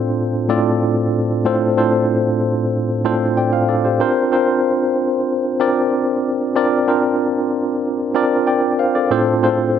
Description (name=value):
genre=pop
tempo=94 BPM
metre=4/4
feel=straight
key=F major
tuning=A4 = 440 Hz
part: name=bright tine electric piano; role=solo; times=0.0-9.8 s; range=A2 to G5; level=-15 LUFS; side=equal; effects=medium stereo tremolo
room=moderate lush hall reverb, RT60 2.4 s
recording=none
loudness=-15 LUFS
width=side -8 dB against mid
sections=0.0-9.8 A section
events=none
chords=0.0 F6/A; 4.0 Bbadd9; 9.1 F6/A